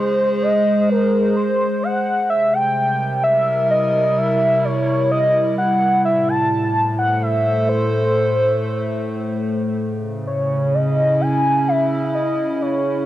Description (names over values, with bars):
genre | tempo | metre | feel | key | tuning
IDM | 128 BPM | 4/4 | swing 56% on 16ths | unclear | A4 = 440 Hz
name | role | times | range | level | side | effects
warm velvety synth lead | melody | 0.0-13.1 s | A#4 to A5 | -18 LUFS | equal | chorus, analog delay
warbly tape-like pad | sustained chords | 0.0-13.1 s | A2 to B#4 | -20 LUFS | equal | chorus, built-in reverb, vintage 12-bit sampler grit, cassette tape
room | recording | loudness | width
moderate small room reverb, RT60 0.5 s | home recording on cassette | -16 LUFS | side -14 dB against mid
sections
0.0-13.1 A section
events
none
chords
0.0 G#; 2.3 C7; 6.1 Am; 9.8 C#madd9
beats
| 0.43 0.90 1.36 1.83 | 2.30 2.77 3.24 3.71 | 4.18 4.64 5.11 5.58 | 6.05 6.52 6.99 7.46 | 7.93 8.39 8.86 9.33 | 9.80 10.27 10.74 11.21 | 11.68 12.14 12.61